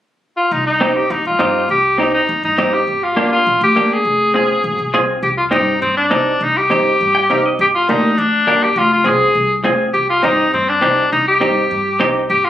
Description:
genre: latin, cumbia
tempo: 204 BPM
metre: 4/4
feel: straight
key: C minor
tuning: A4 = 440 Hz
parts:
  - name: bright alto saxophone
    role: melody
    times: 0.4-12.5 s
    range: C4 to Ab4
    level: -14 LUFS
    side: left 1 dB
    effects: none
  - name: upright bass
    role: bass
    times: 0.5-12.5 s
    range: F1 to G2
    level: -25 LUFS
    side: left 1 dB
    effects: none
  - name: semi-hollow electric guitar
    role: accompaniment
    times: 0.8-12.2 s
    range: Bb3 to G5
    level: -16 LUFS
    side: right 1 dB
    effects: none
room: moderate studio reverb, RT60 0.5 s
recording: recorded on a phone in the room, club reverb, compression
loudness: -12 LUFS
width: side -12 dB against mid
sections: 0.5-5.2 A section; 5.2-12.5 B section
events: clean electric guitar fill 7.0-7.6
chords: 0.0 N.C.; 0.5 Cm; 2.9 Gm; 4.1 Fm; 5.2 Cm; 7.6 Gm; 8.8 Fm; 9.9 Cm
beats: 0.22 | 0.52 0.81 1.11 1.40 | 1.70 1.99 2.29 2.58 | 2.87 3.17 3.46 3.76 | 4.05 4.35 4.64 4.93 | 5.23 5.52 5.82 6.11 | 6.41 6.70 7.00 7.29 | 7.59 7.88 8.17 8.47 | 8.76 9.06 9.35 9.65 | 9.94 10.23 10.53 10.82 | 11.12 11.41 11.71 12.00 | 12.29

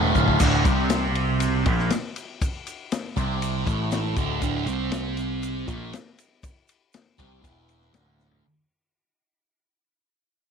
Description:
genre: psychedelic rock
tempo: 120 BPM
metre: 4/4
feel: straight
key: unclear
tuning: A4 = 438 Hz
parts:
  - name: thick fuzz guitar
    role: riff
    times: 0.0-8.4 s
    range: D2 to F4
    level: -25 LUFS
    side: right 2 dB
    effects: distortion, phaser
  - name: growling picked electric bass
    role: bass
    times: 0.0-8.4 s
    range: D1 to C2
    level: -26 LUFS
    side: equal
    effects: overdrive
  - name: vintage drum kit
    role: drums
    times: 0.2-8.4 s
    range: crash cymbal, kick drum, ride cymbal, snare drum, toms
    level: -27 LUFS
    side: left 2 dB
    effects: none
  - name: tube shaker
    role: percussion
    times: 0.2-8.3 s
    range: none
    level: -42 LUFS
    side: right 19 dB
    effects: none
room: light reverb, small room ambience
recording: 1960s-style stereo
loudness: -22 LUFS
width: side -6 dB against mid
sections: 0.4-8.4 A section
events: drum fill 0.0-0.4, 8.2; fade-out 0.4-8.4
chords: 0.4 D5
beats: | 0.41 0.91 1.41 1.91 | 2.41 2.91 3.42 3.92 | 4.42 4.92 5.42 5.93 | 6.43 6.93 7.43 7.94

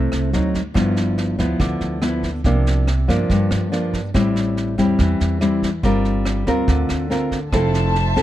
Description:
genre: bossa nova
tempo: 142 BPM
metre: 4/4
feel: straight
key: unclear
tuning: A4 = 442 Hz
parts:
  - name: nylon-string guitar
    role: accompaniment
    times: 0.0-8.2 s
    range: G2 to Bb4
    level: -19 LUFS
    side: left 1 dB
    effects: none
  - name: upright bass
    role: bass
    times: 0.0-8.2 s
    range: F1 to G2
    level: -22 LUFS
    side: right 1 dB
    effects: none
  - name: vintage brush drum kit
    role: drums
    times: 0.1-8.2 s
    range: kick drum, rim click, snare drum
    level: -26 LUFS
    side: right 1 dB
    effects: none
  - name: rich symphonic violin section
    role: sustained chords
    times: 7.5-8.2 s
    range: C5 to A5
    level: -23 LUFS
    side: left 3 dB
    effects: none
room: little or no reverb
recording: none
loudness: -17 LUFS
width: side -13 dB against mid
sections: 0.0-8.2 A section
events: none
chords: 0.3 D7b9; 0.8 G6; 2.4 C9sus4; 4.1 Am7; 5.8 Gm7; 7.5 Fmaj7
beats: 0.33 | 0.75 1.17 1.60 2.02 | 2.45 2.87 3.29 3.72 | 4.14 4.57 4.99 5.41 | 5.84 6.26 6.68 7.11 | 7.53 7.95

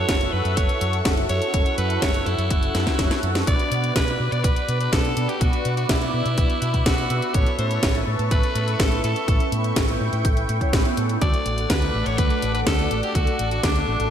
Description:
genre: italo disco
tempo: 124 BPM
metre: 4/4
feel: straight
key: B minor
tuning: A4 = 440 Hz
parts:
  - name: raspy alto saxophone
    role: melody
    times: 0.0-14.1 s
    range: D4 to D5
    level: -27 LUFS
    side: equal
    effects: ping-pong delay
  - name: lush unison pad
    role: sustained chords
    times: 0.0-14.1 s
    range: A4 to D6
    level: -28 LUFS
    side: equal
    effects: chorus, phaser
  - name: mellow synth brass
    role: stabs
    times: 0.0-14.1 s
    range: A3 to C#5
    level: -30 LUFS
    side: right 2 dB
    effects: chorus, phaser
  - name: fingered electric bass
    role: bass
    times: 0.0-14.1 s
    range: F#1 to B2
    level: -25 LUFS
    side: equal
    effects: none
  - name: electronic kick drum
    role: drums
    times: 0.1-13.7 s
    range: none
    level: -22 LUFS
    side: equal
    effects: none
  - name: house drum kit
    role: drums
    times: 0.1-14.1 s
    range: hi-hat, snare drum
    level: -27 LUFS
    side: equal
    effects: gated reverb
room: moderate lush hall reverb, RT60 2.2 s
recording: bright 1980s-style digital production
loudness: -19 LUFS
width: side -9 dB against mid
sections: 0.0-14.1 A section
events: drum fill 2.7-3.5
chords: 0.0 F#m7; 3.5 Bm; 7.3 Aadd9; 11.2 D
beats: 0.09 0.57 1.05 | 1.54 2.02 2.51 2.99 | 3.47 3.96 4.44 4.92 | 5.41 5.89 6.38 6.86 | 7.34 7.83 8.31 8.80 | 9.28 9.76 10.25 10.73 | 11.22 11.70 12.18 12.67 | 13.15 13.63

